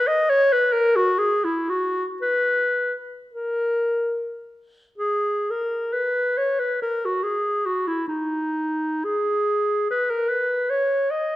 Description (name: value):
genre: classical, free, expressive piece for unaccompanied clarinet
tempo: 46-76 BPM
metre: 3/4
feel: rubato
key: unclear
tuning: A4 = 439 Hz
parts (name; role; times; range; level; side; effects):
- clear clarinet; solo; 0.0-11.4 s; D#4 to D#5; -20 LUFS; equal; none
room: wet recital hall reverb, RT60 1.4 s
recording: dark, warm production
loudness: -20 LUFS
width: side -15 dB against mid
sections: 0.0-5.5 A section; 5.5-11.4 B section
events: none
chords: none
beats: 0.28 1.19 | 2.22 3.33 4.39 | 5.49 6.37 7.24 | 8.09 9.06 9.90 | 10.70